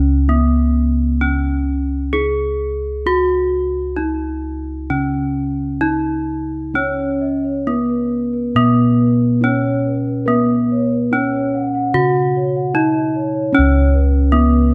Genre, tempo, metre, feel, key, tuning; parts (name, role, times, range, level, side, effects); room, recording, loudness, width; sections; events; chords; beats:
Javanese gamelan; 65-77 BPM; 4/4; straight; C# slendro; A4 = 440 Hz
gamelan-type bronze metallophone; melody; 0.0-14.7 s; B3-40c to G#4+20c; -19 LUFS; equal
gamelan-type bossed gongs; bass; 0.0-14.7 s; C#2 to B4-40c; -22 LUFS; equal
gamelan-type bronze metallophone; arpeggios; 6.8-14.7 s; B4-40c to F#5-20c; -26 LUFS; equal
moderate recital hall reverb, RT60 1.4 s; dark, warm production; -17 LUFS; mono
0.0-13.5 A section; 13.5-14.7 B section
0.29 1.21 2.13 | 3.06 3.98 4.90 5.83 | 6.75 7.66 8.55 9.43 | 10.28 11.12 11.94 12.75 | 13.54 14.32